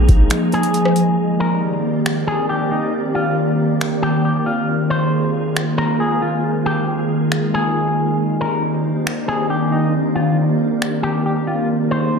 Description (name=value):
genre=hip hop, atmospheric cloud-rap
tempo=137 BPM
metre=4/4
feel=half-time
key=C minor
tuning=A4 = 439 Hz
part: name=glassy FM pad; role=sustained chords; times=0.0-12.2 s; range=Eb3 to D5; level=-18 LUFS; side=equal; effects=ensemble chorus, built-in reverb, sidechain pumping
part: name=wind-like tuned noise texture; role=texture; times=0.0-12.2 s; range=Ab3 to Bb5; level=-29 LUFS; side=right 1 dB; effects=built-in reverb
part: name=booming analog drum machine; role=drums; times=0.1-10.9 s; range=finger snaps, hi-hat, kick drum, rim click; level=-19 LUFS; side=equal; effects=overdrive
part: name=electric guitar with an envelope filter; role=melody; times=0.5-12.1 s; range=Eb4 to C5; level=-23 LUFS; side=left 1 dB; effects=spring reverb, analog delay
room=wet plate reverb, RT60 1.1 s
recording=dreamy mix soaked in reverb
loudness=-16 LUFS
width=side -5 dB against mid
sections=0.0-1.2 A section; 1.2-12.2 B section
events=break 0.3-1.2, 1.2-8.2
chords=0.0 Bb7sus4; 1.2 Cm9; 4.7 Ab69; 6.4 Bb7sus4; 8.2 Cm9; 11.7 Ab69